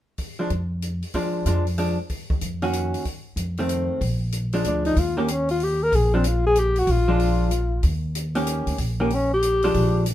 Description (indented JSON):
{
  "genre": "jazz, small-group swing and bop",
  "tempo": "188 BPM",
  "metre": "3/4",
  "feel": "swing 64% on 8ths",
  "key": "Bb mixolydian",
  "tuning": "A4 = 440 Hz",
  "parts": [
    { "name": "open jazz drum kit", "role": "drums", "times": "0.2-10.1 s", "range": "hi-hat, kick drum", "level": "-31 LUFS", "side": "equal", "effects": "none" },
    { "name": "vintage hollow-body jazz guitar", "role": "accompaniment", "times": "0.4-10.1 s", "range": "Eb3 to G4", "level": "-24 LUFS", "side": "equal", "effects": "none" },
    { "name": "upright bass", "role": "bass", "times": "0.5-10.1 s", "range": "Bb1 to F2", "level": "-24 LUFS", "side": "equal", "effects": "none" },
    { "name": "dark alto saxophone", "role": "melody", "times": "4.7-10.0 s", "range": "Bb3 to Bb4", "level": "-22 LUFS", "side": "left 2 dB", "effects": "none" }
  ],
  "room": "light reverb",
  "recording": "minimal, uncompressed stereo recording",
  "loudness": "-20 LUFS",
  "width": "side -13 dB against mid",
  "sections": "0.2-4.0 A section; 4.0-10.1 B section",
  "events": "none",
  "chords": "0.2 Fm6; 2.1 Ebm7; 3.1 F7; 4.0 Bb7; 5.0 Eb; 5.9 Bb7; 7.8 Eb7"
}